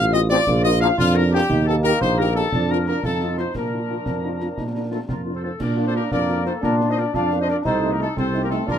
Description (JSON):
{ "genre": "military-style march for wind band", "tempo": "117 BPM (dotted quarters)", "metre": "6/8", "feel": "straight", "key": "Bb major", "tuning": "A4 = 440 Hz", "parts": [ { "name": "warm trumpet section", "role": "melody", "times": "0.0-8.8 s", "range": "F4 to F5", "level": "-26 LUFS", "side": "left 2 dB", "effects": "none" }, { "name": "mellow euphonium", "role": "second line", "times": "0.0-8.8 s", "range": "A3 to F4", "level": "-28 LUFS", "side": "right 3 dB", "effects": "none" }, { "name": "piccolo", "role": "second line", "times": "0.0-5.4 s", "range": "F5 to F6", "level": "-30 LUFS", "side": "left 4 dB", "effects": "none" }, { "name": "warm woodwind section", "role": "second line", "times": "0.0-8.8 s", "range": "F4 to F5", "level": "-28 LUFS", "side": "left 2 dB", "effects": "none" }, { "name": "dark tuba", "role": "bass", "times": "0.0-8.8 s", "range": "A1 to Bb2", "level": "-23 LUFS", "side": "right 2 dB", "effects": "none" }, { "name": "dark French horn section", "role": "accompaniment", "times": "0.1-8.6 s", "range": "A3 to G4", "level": "-28 LUFS", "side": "left 1 dB", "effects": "none" }, { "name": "mellow trombone section", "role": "sustained chords", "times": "0.3-8.8 s", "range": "Eb3 to Eb4", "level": "-25 LUFS", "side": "left 1 dB", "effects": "none" }, { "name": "concert snare drum, concert bass drum and clash cymbals", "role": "drums", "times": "0.3-8.8 s", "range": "none", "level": "-31 LUFS", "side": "equal", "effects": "none" } ], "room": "light reverb", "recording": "none", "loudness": "-18 LUFS", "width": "side -9 dB against mid", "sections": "0.0-5.6 A section; 5.6-8.8 B section", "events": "none", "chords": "0.5 Bb; 1.5 Eb; 2.5 Bb/F; 3.0 F7; 3.5 Bb; 7.7 Adim/C" }